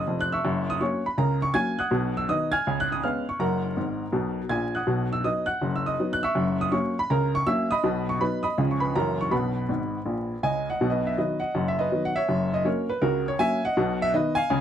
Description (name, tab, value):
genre	jazz, stride piano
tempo	162 BPM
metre	4/4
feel	swing 59% on 8ths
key	B major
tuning	A4 = 440 Hz
part	clear upright piano	solo	0.0-14.6 s	E#1 to G#6	-23 LUFS	equal	none
room	light reverb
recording	close, detailed microphones, vinyl crackle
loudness	-23 LUFS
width	side -9 dB against mid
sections	0.0-10.8 A section; 10.8-14.6 A section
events	upright piano fill 3.8-4.9, 9.7-10.8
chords	0.4 F#7; 1.9 B; 2.7 C#7; 3.4 F#; 4.9 B; 6.4 F#7; 7.8 B; 8.6 C#7; 8.9 F#7; 9.3 B; 12.3 F#7; 13.8 B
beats	0.06 | 0.43 0.80 1.17 1.54 | 1.91 2.28 2.65 3.02 | 3.39 3.76 4.13 4.50 | 4.87 5.24 5.61 5.98 | 6.35 6.72 7.09 7.46 | 7.83 8.21 8.57 8.95 | 9.31 9.69 10.05 10.43 | 10.79 11.16 11.54 11.90 | 12.27 12.64 13.01 13.38 | 13.75 14.12 14.49